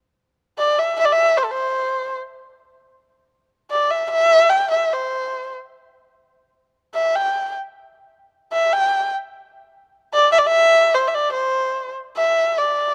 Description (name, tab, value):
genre	chinese traditional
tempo	75 BPM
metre	2/4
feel	rubato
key	C gong mode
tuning	A4 = 440 Hz
part	dark erhu	solo	0.6-12.9 s	A4 to G5	-18 LUFS	equal	none
room	light reverb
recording	close, detailed microphones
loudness	-19 LUFS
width	mono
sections	0.0-12.2 A section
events	none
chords	none